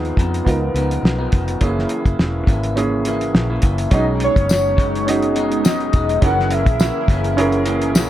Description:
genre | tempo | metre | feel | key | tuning
indie pop, bedroom pop | 104 BPM | 4/4 | swing 55% on 16ths | B major | A4 = 444 Hz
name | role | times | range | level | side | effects
electric guitar through a small old amp | accompaniment | 0.0-8.1 s | F#2 to E4 | -24 LUFS | left 2 dB | wide subtle chorus, warbly pitch drift
warm upright piano | accompaniment | 0.0-8.1 s | A#3 to A#4 | -22 LUFS | right 3 dB | cassette tape
vintage muted fingered electric bass | bass | 0.0-8.1 s | E1 to E#2 | -22 LUFS | equal | none
cloth-damped thuddy drum kit | drums | 0.0-8.1 s | hi-hat, kick drum, snare drum | -17 LUFS | equal | none
soft octave-layered synth lead | melody | 3.9-7.7 s | C#5 to F#5 | -21 LUFS | left 1 dB | lush chorus, tape echo
hollow soft pad | sustained chords | 3.9-8.1 s | F#3 to A#4 | -26 LUFS | left 1 dB | ensemble chorus
tambourine | percussion | 4.5-8.1 s | none | -29 LUFS | left 7 dB | none
room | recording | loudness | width
light reverb | none | -15 LUFS | side -13 dB against mid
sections
0.0-3.9 A section; 3.9-8.1 B section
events
none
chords
0.0 C#9; 1.6 F#7; 3.9 B6; 6.2 F#7

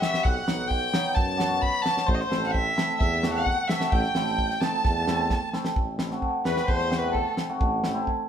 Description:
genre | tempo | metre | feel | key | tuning
klezmer | 130 BPM | 4/4 | straight | A dorian sharp4 | A4 = 441 Hz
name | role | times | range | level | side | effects
warm violin | melody | 0.0-7.4 s | A4 to B5 | -28 LUFS | left 1 dB | none
accordion | second line | 0.0-7.4 s | A4 to B5 | -32 LUFS | right 3 dB | none
cimbalom | accompaniment | 0.0-8.1 s | F#3 to F#4 | -29 LUFS | equal | none
damped 70s drum kit | drums | 0.0-8.2 s | kick drum, snare drum | -27 LUFS | equal | none
clear tuba | bass | 0.3-8.0 s | A1 to F#2 | -32 LUFS | right 1 dB | none
room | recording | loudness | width
moderate studio reverb, RT60 1.0 s | band playing live in one room | -23 LUFS | side -8 dB against mid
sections
0.0-5.8 A section; 5.8-8.3 B section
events
drum fill 5.3-5.8; violin solo 5.8-8.3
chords
0.2 B; 2.1 Am

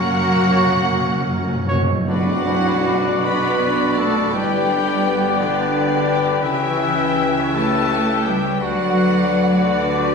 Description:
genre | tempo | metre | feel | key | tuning
classical, slow romantic movement for symphony orchestra | 50-59 BPM (dotted quarters) | 6/8 | rubato | B minor | A4 = 440 Hz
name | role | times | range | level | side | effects
clear symphonic violin section | melody | 0.0-10.1 s | D5 to F#5 | -29 LUFS | left 3 dB | none
bright clarinet | second line | 0.0-10.1 s | B3 to G4 | -27 LUFS | equal | none
mellow cor anglais | second line | 0.0-10.1 s | A#4 to D5 | -28 LUFS | left 2 dB | none
mellow hollow small flute group | second line | 0.0-10.1 s | F#4 to B5 | -27 LUFS | left 1 dB | none
rich symphonic violin section | second line | 0.0-10.1 s | F#4 to B5 | -27 LUFS | left 1 dB | none
mellow bassoon | accompaniment | 0.0-10.1 s | B2 to A#3 | -28 LUFS | left 2 dB | none
rich symphonic viola section | accompaniment | 0.0-10.1 s | A#3 to G5 | -27 LUFS | left 1 dB | none
clear symphonic double bass section | bass | 0.0-10.1 s | G1 to F#2 | -29 LUFS | right 1 dB | none
rich symphonic cello section | bass | 0.0-10.1 s | D3 to B3 | -22 LUFS | right 1 dB | none
timpani | percussion | 0.0-2.0 s | F#2 | -25 LUFS | equal | none
dark French horn section | sustained chords | 0.5-10.1 s | A#3 to B4 | -26 LUFS | left 3 dB | none
warm trumpet | stabs | 0.5-10.1 s | D4 to C#5 | -24 LUFS | left 1 dB | none
tam-tam | percussion | 2.1-5.0 s | none | -31 LUFS | left 1 dB | none
room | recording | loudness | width
wet recital hall reverb, RT60 1.3 s | recorded in a church or concert hall, small room ambience | -16 LUFS | side -5 dB against mid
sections
0.0-2.1 A section; 2.1-10.1 B section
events
timpani fill 0.0-2.1; band accent 2.1-2.9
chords
0.0 F#; 2.1 Bm; 4.3 G; 6.4 C#m7b5; 8.6 Bm/D

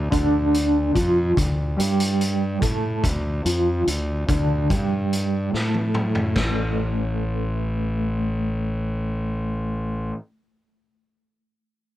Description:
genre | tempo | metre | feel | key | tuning
psychedelic rock | 72 BPM | 4/4 | straight | A mixolydian | A4 = 441 Hz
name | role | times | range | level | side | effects
electric guitar through a small old amp | riff | 0.0-10.2 s | A2 to A4 | -24 LUFS | right 1 dB | tremolo, low-pass filter
fuzz fingered electric bass | bass | 0.0-10.1 s | A1 to A2 | -24 LUFS | equal | overdrive
vintage drum kit | drums | 0.1-6.6 s | china cymbal, hi-hat, kick drum, snare drum, toms | -26 LUFS | equal | none
room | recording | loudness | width
little or no reverb | none | -20 LUFS | side -14 dB against mid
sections
0.0-6.4 A section; 6.4-9.7 B section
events
filter sweep on clean electric guitar 0.0-6.4; drum fill 5.5-6.4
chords
0.0 D5; 6.4 A

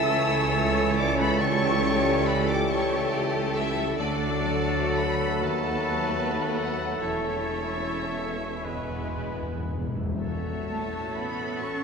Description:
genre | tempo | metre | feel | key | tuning
classical, slow romantic movement for symphony orchestra | 36-48 BPM (dotted quarters) | 6/8 | rubato | A major | A4 = 439 Hz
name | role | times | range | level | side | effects
rich chamber violin section | melody | 0.0-11.8 s | C#5 to E6 | -34 LUFS | left 4 dB | none
hollow flute section | second line | 0.0-11.8 s | D4 to C#6 | -34 LUFS | equal | none
rich chamber violin section | second line | 0.0-11.8 s | G#3 to C#6 | -35 LUFS | left 1 dB | none
warm oboe | second line | 0.0-11.8 s | A4 to C#5 | -35 LUFS | equal | none
rich studio viola section | accompaniment | 0.0-11.8 s | F#4 to C#5 | -36 LUFS | left 2 dB | none
warm bassoon | accompaniment | 0.0-9.9 s | E3 to A3 | -35 LUFS | left 1 dB | none
clear trombone section | sustained chords | 0.0-11.8 s | D3 to C#4 | -36 LUFS | right 3 dB | none
warm French horn section | sustained chords | 0.0-11.8 s | A3 to A4 | -34 LUFS | left 4 dB | none
concert harp | arpeggios | 0.0-11.8 s | A2 to A5 | -39 LUFS | left 7 dB | none
dark trumpet section | stabs | 0.0-9.8 s | A4 to B4 | -33 LUFS | right 1 dB | none
mellow tuba | bass | 0.0-9.9 s | E1 to D#2 | -34 LUFS | right 3 dB | none
rich chamber double bass section | bass | 0.0-11.8 s | E1 to D#2 | -35 LUFS | right 3 dB | none
warm chamber cello section | bass | 0.0-11.8 s | C#2 to C#4 | -34 LUFS | right 3 dB | none
timpani | percussion | 8.6-10.2 s | E2 | -32 LUFS | left 1 dB | none
room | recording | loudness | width
wet concert hall reverb, RT60 2.0 s | minimal, uncompressed stereo recording | -24 LUFS | side -5 dB against mid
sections
0.0-10.2 A section; 10.2-11.8 B section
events
timpani fill 8.6-10.2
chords
0.0 A/C#; 1.4 A7/C#; 4.0 D; 5.4 B7/D#; 7.0 A/E; 8.6 E; 10.2 A

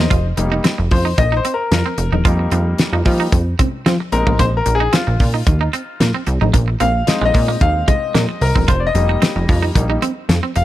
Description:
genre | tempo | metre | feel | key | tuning
early-eighties boogie funk | 112 BPM | 4/4 | straight | F minor | A4 = 439 Hz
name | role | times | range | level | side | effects
bright baby grand piano | accompaniment | 0.0-10.6 s | G3 to F5 | -20 LUFS | left 3 dB | none
twangy electric guitar | riff | 0.0-10.6 s | Ab3 to F4 | -24 LUFS | right 8 dB | lush chorus
plucky analog bass | bass | 0.0-10.6 s | E1 to F3 | -17 LUFS | equal | none
damped 70s drum kit | drums | 0.1-10.6 s | hi-hat, kick drum, snare drum | -17 LUFS | equal | none
congas | percussion | 0.1-10.4 s | none | -26 LUFS | left 5 dB | none
room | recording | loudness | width
small room ambience | none | -14 LUFS | side -14 dB against mid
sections
0.1-10.6 A section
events
grand piano solo 0.1-10.6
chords
0.1 F9sus4; 4.1 Bb9sus4; 8.7 F9sus4

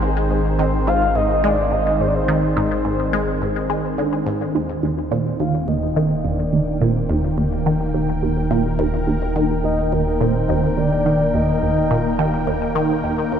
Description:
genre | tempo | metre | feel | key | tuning
ambient, sequencer-driven space music | 106 BPM | 4/4 | straight | unclear | A4 = 440 Hz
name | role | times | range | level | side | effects
soft octave-layered synth lead | melody | 0.0-12.5 s | Bb4 to F5 | -24 LUFS | left 1 dB | chorus, tremolo, ping-pong delay
sweeping resonant pad | sustained chords | 0.0-13.4 s | Eb3 to G5 | -23 LUFS | right 1 dB | chorus
resonant blip pluck | riff | 0.0-13.4 s | Eb2 to Ab3 | -20 LUFS | right 1 dB | phaser, ping-pong delay
round analog bass | bass | 0.0-13.4 s | Eb1 to Ab1 | -26 LUFS | equal | none
room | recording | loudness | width
wet cathedral reverb, RT60 5.4 s | in a vast, echoing space | -17 LUFS | side -8 dB against mid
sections
0.0-13.4 A section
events
none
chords
0.0 Ab; 4.5 Eb

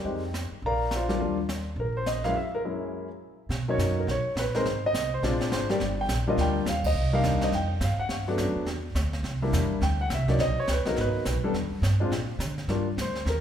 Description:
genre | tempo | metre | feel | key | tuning
jazz piano trio | 209 BPM | 4/4 | swing 62% on 8ths | unclear | A4 = 439 Hz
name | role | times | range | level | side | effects
clear baby grand piano | melody | 0.0-13.4 s | Gb2 to Bb5 | -27 LUFS | left 1 dB | none
upright bass | bass | 0.0-13.4 s | G1 to D3 | -28 LUFS | right 1 dB | none
jazz brush drum kit | drums | 0.1-13.4 s | brushed snare drum, hi-hat, kick drum, ride cymbal, snare drum | -34 LUFS | right 2 dB | none
room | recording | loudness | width
wet recital hall reverb, RT60 1.4 s | recorded in a church or concert hall | -25 LUFS | side -9 dB against mid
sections
0.0-3.5 A section; 3.5-12.7 B section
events
break 2.4-3.5; band accent 6.8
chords
0.1 Fm7; 0.6 Bbadd9; 1.2 Ebmaj7(no3); 2.4 Gb9; 3.5 Bmaj9; 4.7 G#; 5.2 A#7; 5.8 D#maj9; 6.9 Cm7; 7.5 Fsus2; 8.1 Gmaj9; 9.2 C9; 10.4 Bmaj9; 11.0 G#m9; 11.5 Em; 12.1 A#; 12.7 Ebmaj7

